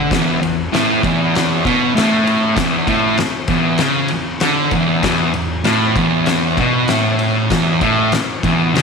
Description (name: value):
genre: garage rock duo or trio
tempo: 97 BPM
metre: 4/4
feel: straight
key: unclear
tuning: A4 = 440 Hz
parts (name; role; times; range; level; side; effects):
- fuzz guitar; riff; 0.0-8.8 s; E2 to D3; -14 LUFS; right 1 dB; distortion
- oversized low-tuned drum kit; drums; 0.1-8.8 s; kick drum, ride cymbal, snare drum; -20 LUFS; left 3 dB; none
room: moderate echo chamber reverb, RT60 2.3 s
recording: 1960s-style stereo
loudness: -13 LUFS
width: side -5 dB against mid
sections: 0.1-8.8 A section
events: none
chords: none